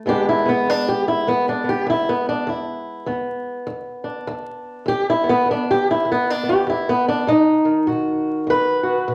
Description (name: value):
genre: acoustic country blues, solo or duo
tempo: 100 BPM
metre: 4/4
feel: swing 62% on 8ths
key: E mixolydian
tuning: A4 = 439 Hz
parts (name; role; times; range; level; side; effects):
- fingerpicked swing-style acoustic guitar; solo; 0.0-9.1 s; E2 to B4; -20 LUFS; equal; none
room: wet large studio reverb, RT60 0.8 s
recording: vinyl crackle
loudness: -20 LUFS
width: mono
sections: 0.0-9.1 A section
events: steel-string acoustic guitar solo 0.0-9.1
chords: 0.1 E7; 7.3 B